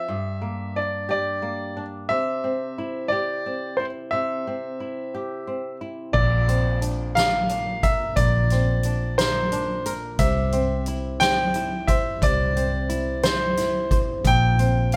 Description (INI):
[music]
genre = six-eight pop ballad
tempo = 59 BPM (dotted quarters)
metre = 6/8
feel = straight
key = unclear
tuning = A4 = 440 Hz
[part]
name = bright grand piano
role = melody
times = 0.0-15.0 s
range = C5 to G5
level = -27 LUFS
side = equal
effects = none
[part]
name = flamenco guitar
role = accompaniment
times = 0.0-15.0 s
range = G2 to C5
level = -31 LUFS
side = equal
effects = none
[part]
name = vintage muted fingered electric bass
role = bass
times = 6.1-15.0 s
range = Bb1 to C2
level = -27 LUFS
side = equal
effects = none
[part]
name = soft-mallet drum kit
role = drums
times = 6.1-15.0 s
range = crash cymbal, hi-hat, kick drum, snare drum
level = -28 LUFS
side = equal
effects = none
[sound]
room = moderate studio ambience, RT60 0.5 s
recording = band playing live in one room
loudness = -23 LUFS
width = mono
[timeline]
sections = 0.0-6.2 A section; 6.2-15.0 B section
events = none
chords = 0.1 Gm; 2.1 C; 6.2 Bbadd9; 10.2 C; 14.2 Bbsus2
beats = | 0.07 1.09 | 2.10 3.11 | 4.13 5.14 | 6.15 7.16 | 8.18 9.19 | 10.20 11.21 | 12.22 13.24 | 14.25